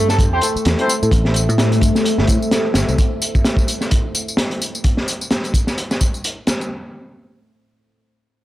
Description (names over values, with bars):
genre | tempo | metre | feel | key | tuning
breakbeat, breaks | 129 BPM | 4/4 | swing 57% on 16ths | A minor | A4 = 441 Hz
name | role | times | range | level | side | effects
deep dark ambient pad | sustained chords | 0.1-4.8 s | A3 to E5 | -23 LUFS | left 1 dB | chorus, built-in reverb, sidechain pumping
overdriven synth lead | riff | 0.0-1.1 s | A3 to A4 | -22 LUFS | right 1 dB | phaser, tape echo
picked electric bass | bass | 0.0-2.9 s | G1 to A2 | -18 LUFS | equal | none
crunchy breakbeat drum kit | drums | 0.1-6.6 s | hi-hat, kick drum, snare drum | -18 LUFS | equal | none
tambourine | drums | 0.1-6.7 s | none | -25 LUFS | left 1 dB | overdrive
warm brass ensemble | stabs | 0.3-0.9 s | C4 to C5 | -23 LUFS | left 2 dB | low-pass filter, tape echo
room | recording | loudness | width
small room ambience | dry, gritty hardware recording | -15 LUFS | side -15 dB against mid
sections
0.0-6.7 A section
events
filter sweep on analog synth lead 0.0-1.1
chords
0.0 Am